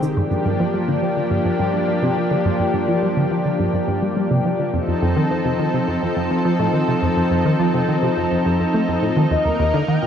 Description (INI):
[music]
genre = ambient, sequencer-driven space music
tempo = 105 BPM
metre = 4/4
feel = straight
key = G minor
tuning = A4 = 440 Hz
[part]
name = lush unison pad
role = sustained chords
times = 0.0-10.1 s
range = Eb3 to Bb4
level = -19 LUFS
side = left 1 dB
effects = chorus
[part]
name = tight sequenced synth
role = riff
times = 0.0-10.1 s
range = Eb2 to A3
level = -21 LUFS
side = equal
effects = chorus, tape echo
[part]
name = expressive synth lead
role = melody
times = 9.3-10.1 s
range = Eb5 to G5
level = -22 LUFS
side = left 2 dB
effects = analog chorus, cassette tape, tape echo
[sound]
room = wet scoring stage reverb, RT60 1.9 s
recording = worn, warbling old tape, cassette tape, warbly pitch drift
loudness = -17 LUFS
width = side -8 dB against mid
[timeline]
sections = 0.2-10.1 A section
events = none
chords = 0.2 Gm7; 4.7 F7; 9.3 Eb